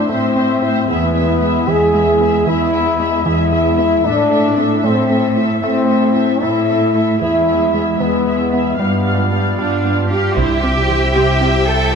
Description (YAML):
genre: cinematic, hybrid orchestral and electronic film score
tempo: 76 BPM (dotted quarters)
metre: 6/8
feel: straight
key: A harmonic minor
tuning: A4 = 440 Hz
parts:
  - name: warm symphonic viola section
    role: accompaniment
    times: 0.0-11.5 s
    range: C4 to F5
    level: -22 LUFS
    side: right 1 dB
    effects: none
  - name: clear French horn section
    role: sustained chords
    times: 0.0-11.9 s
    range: C3 to G#4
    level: -16 LUFS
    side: left 3 dB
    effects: none
  - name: warbly tape-like pad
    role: sustained chords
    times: 0.0-12.0 s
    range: G3 to E5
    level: -22 LUFS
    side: right 2 dB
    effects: chorus, built-in reverb
  - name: analog pluck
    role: arpeggios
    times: 0.1-11.6 s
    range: C3 to E4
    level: -25 LUFS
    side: right 2 dB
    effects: none
  - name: warm symphonic cello section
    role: bass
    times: 0.1-11.9 s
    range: E2 to A4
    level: -19 LUFS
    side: right 2 dB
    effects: none
  - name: rich studio violin section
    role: second line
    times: 10.4-12.0 s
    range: E5 to G5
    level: -19 LUFS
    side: equal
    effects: none
  - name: sub bass with octave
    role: bass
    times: 10.4-12.0 s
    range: C2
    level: -20 LUFS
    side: right 1 dB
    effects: none
  - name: taiko ensemble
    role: drums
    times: 10.4-11.4 s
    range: none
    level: -25 LUFS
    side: right 2 dB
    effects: none
room: moderate scoring stage reverb, RT60 1.7 s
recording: none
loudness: -13 LUFS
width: side -6 dB against mid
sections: 0.0-10.4 A section; 10.4-12.0 B section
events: none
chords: 0.0 Am; 0.9 E; 4.1 Am; 7.2 E; 8.8 G7; 10.4 C